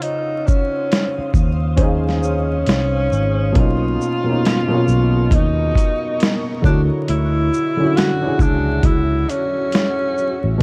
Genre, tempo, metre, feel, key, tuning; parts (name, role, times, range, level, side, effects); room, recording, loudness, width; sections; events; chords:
lo-fi hip hop; 68 BPM; 4/4; swing 62% on 16ths; A4 = 440 Hz
breathy tenor saxophone; melody; 0.0-10.6 s; Db4 to F#4; -24 LUFS; equal; low-pass filter, tape echo
dark upright piano; accompaniment; 0.0-10.6 s; Cb3 to C#5; -24 LUFS; equal; low-pass filter
granular cloud pad; sustained chords; 0.0-10.6 s; F#4 to Eb6; -33 LUFS; equal; built-in reverb, low-pass filter
boom bap sampler-style drum kit; drums; 0.0-10.6 s; hi-hat, kick drum, shaker, snare drum; -20 LUFS; equal; vintage 12-bit sampler grit
fingered electric bass; bass; 1.2-10.6 s; Ab1 to Eb2; -21 LUFS; equal
light reverb, digital ambience; vinyl crackle; -18 LUFS; mono
0.0-3.6 A section; 3.6-10.6 B section
0.0 Dbmaj9; 3.6 Cbmaj9; 6.6 Dmaj9